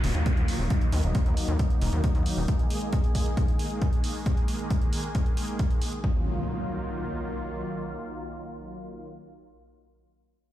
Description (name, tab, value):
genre	uplifting trance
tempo	135 BPM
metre	4/4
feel	straight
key	Eb minor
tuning	A4 = 440 Hz
part	filtered supersaw swell	sustained chords	0.0-9.1 s	Eb3 to Ab4	-33 LUFS	equal	sidechain pumping
part	gritty driven synth bass	bass	0.0-2.5 s	Eb1 to Eb2	-26 LUFS	equal	sidechain pumping
part	electronic hi-hat	drums	0.0-6.0 s	none	-40 LUFS	right 2 dB	none
part	downlifter and impact	sound effects	0.0-2.5, 6.0-9.1 s	none	-37 LUFS	equal	none
part	electronic kick drum	drums	0.3-6.1 s	none	-25 LUFS	equal	none
room	light reverb, digital ambience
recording	played on a big sound system in a bare room, large studio reverb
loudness	-24 LUFS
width	side -13 dB against mid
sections	0.0-6.0 A section; 6.0-9.6 B section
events	none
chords	0.0 Ebmadd9; 2.5 Absus2; 6.0 Ebmadd9